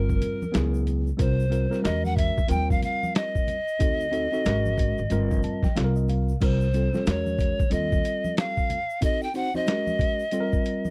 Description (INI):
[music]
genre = hip hop, jazz-hop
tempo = 92 BPM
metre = 4/4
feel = swing 61% on 16ths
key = unclear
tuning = A4 = 441 Hz
[part]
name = bright reedy pan flute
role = melody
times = 0.0-10.9 s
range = Bb4 to G5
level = -31 LUFS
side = equal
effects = none
[part]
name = mellow tine electric piano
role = accompaniment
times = 0.0-10.9 s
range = F3 to A5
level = -31 LUFS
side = equal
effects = none
[part]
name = upright bass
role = bass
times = 0.0-8.0 s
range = G1 to E2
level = -28 LUFS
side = equal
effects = none
[part]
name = boom bap sampler-style drum kit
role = drums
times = 0.1-10.8 s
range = crash cymbal, hi-hat, kick drum, snare drum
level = -28 LUFS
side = equal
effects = none
[part]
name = congas and tube shaker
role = percussion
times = 0.1-10.9 s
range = none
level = -39 LUFS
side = equal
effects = none
[sound]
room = little or no reverb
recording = dry, close 1970s-style studio recording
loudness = -25 LUFS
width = mono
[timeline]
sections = 0.0-6.4 A section; 6.4-10.9 B section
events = tine electric piano fill 5.1-6.4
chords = 0.0 Gm7; 0.5 Dbm7; 1.2 C5; 1.8 E69; 2.5 Eb69; 3.8 D7b9; 4.5 Ab5; 5.1 Gm7; 5.8 C5; 7.1 E69; 7.7 Eb69; 9.0 Cdim7; 9.7 Ab5; 10.3 Gm7